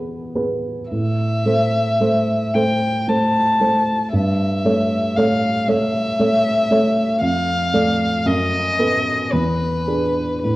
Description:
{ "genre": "classical, romantic duo for violin and grand piano", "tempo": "57 BPM", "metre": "3/4", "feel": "uneven beats, rubato", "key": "A minor", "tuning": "A4 = 441 Hz", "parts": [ { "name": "dark grand piano", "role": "accompaniment", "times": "0.0-10.6 s", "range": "E2 to D5", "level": "-18 LUFS", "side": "right 1 dB", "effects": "none" }, { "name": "dark violin", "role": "melody", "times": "0.9-10.6 s", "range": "B4 to A5", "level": "-20 LUFS", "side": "left 1 dB", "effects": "none" } ], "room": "wet recital hall reverb, RT60 1.4 s", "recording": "worn, warbling old tape, cassette tape, warbly pitch drift", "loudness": "-16 LUFS", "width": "side -18 dB against mid", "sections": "0.0-10.6 A section", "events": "none", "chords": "0.0 E; 0.9 Am; 4.1 A7/G; 7.2 Dm/F; 8.3 B7/F#; 9.3 E7" }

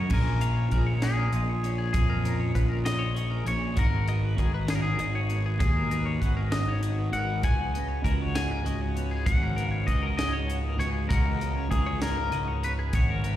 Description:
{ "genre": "math rock and midwest emo", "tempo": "66 BPM (dotted quarters)", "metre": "6/8", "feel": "straight", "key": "unclear", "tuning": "A4 = 440 Hz", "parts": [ { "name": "twangy electric guitar", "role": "melody", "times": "0.0-13.4 s", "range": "G#4 to G#5", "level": "-33 LUFS", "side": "left 3 dB", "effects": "slapback echo, tape echo" }, { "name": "twelve-string electric guitar", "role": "accompaniment", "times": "0.0-13.4 s", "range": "G#2 to G#4", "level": "-33 LUFS", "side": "right 4 dB", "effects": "lush chorus" }, { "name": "twelve-string electric guitar", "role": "arpeggios", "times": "0.0-13.4 s", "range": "G#4 to G#5", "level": "-37 LUFS", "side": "left 6 dB", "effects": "tremolo, slapback echo" }, { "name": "fuzz fingered electric bass", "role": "bass", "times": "0.0-13.4 s", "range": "G#1 to E#2", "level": "-28 LUFS", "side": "left 1 dB", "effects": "overdrive" }, { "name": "crisp fusion drum kit", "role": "drums", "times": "0.1-13.4 s", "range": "crash cymbal, hi-hat, kick drum, snare drum", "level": "-28 LUFS", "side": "equal", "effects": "none" } ], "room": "little or no reverb", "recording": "live gig heard through the venue's PA, recital hall reverb", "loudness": "-24 LUFS", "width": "side -12 dB against mid", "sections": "0.1-13.4 A section", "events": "none", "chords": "0.1 A#m7; 3.8 G#m9" }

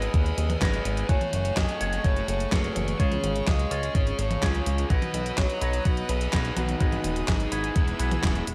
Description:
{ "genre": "italo disco", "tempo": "126 BPM", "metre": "4/4", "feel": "straight", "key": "F# dorian", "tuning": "A4 = 440 Hz", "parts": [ { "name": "dark smooth lead guitar", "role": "melody", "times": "0.0-8.4 s", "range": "D#4 to D#5", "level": "-33 LUFS", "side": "equal", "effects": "overdrive, digital delay" }, { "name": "clear studio string section", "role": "sustained chords", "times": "0.0-8.5 s", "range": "A3 to E6", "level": "-40 LUFS", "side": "equal", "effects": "none" }, { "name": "electric guitar with an envelope filter", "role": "stabs", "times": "0.0-8.5 s", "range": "F#3 to G#5", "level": "-37 LUFS", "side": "equal", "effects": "none" }, { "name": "chorused synth bass", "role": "bass", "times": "0.0-8.5 s", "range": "D#1 to D#2", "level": "-31 LUFS", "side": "equal", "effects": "tube saturation" }, { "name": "clean 12-bit digital drum machine", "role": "drums", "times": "0.0-8.5 s", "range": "handclaps, hi-hat, snare drum, toms", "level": "-34 LUFS", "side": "equal", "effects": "overdrive, gated reverb" }, { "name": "electronic kick drum", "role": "drums", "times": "0.1-8.3 s", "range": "none", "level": "-27 LUFS", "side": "equal", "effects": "overdrive" } ], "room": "digital ambience", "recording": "none", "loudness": "-26 LUFS", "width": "mono", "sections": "0.0-8.5 A section", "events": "none", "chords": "0.0 G#m; 1.1 F#madd9; 3.0 C#; 4.9 B; 6.8 G#m; 7.8 E" }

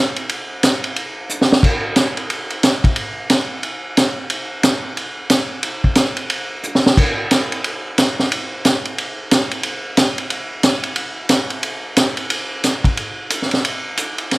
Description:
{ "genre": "jazz", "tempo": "180 BPM", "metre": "4/4", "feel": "swing 62% on 8ths", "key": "none", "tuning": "none", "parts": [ { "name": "vintage drum kit", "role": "drums", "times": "0.2-14.4 s", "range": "crash cymbal, hi-hat, kick drum, ride cymbal, snare drum", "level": "-16 LUFS", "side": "equal", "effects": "none" } ], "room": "light reverb", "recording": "none", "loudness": "-16 LUFS", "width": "side -22 dB against mid", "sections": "0.0-12.3 A section; 12.3-14.4 B section", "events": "drum fill 1.3-1.6, 6.6-7.0", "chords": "none" }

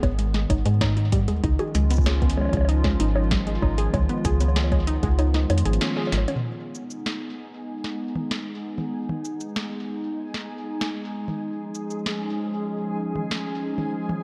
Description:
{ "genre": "IDM", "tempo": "96 BPM", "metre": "4/4", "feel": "straight", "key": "unclear", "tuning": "A4 = 440 Hz", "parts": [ { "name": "hollow soft pad", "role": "sustained chords", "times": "0.0-14.2 s", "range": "Eb3 to Ab4", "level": "-32 LUFS", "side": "equal", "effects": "chorus, sidechain pumping" }, { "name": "warbly dusty pluck", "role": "arpeggios", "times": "0.0-6.4 s", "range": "Eb3 to Ab4", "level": "-31 LUFS", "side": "equal", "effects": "chorus, digital delay" }, { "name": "woody FM bass", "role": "bass", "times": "0.0-6.3 s", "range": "Ab1 to Ab2", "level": "-24 LUFS", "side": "equal", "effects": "tube saturation" }, { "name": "booming analog drum machine", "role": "drums", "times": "0.0-14.2 s", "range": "bongos, hi-hat, shaker, snare drum, toms", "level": "-33 LUFS", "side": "equal", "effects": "small room ambience, delay" }, { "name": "electronic kick drum", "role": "drums", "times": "0.0-5.2 s", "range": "none", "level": "-28 LUFS", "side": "equal", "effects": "small room ambience" }, { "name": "backwards swelling texture", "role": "texture", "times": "7.2-14.2 s", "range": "Ab3 to Ab4", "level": "-40 LUFS", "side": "equal", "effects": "built-in reverb" } ], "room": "light reverb", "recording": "dark, warm production", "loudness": "-25 LUFS", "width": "mono", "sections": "0.0-6.4 A section; 6.4-14.2 B section", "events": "kick drops out 5.2-6.4; band accent 5.8-6.1; drum fill 6.1-6.4", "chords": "0.0 Abm; 1.4 Dbadd9; 6.4 Abm; 11.4 Dbadd9" }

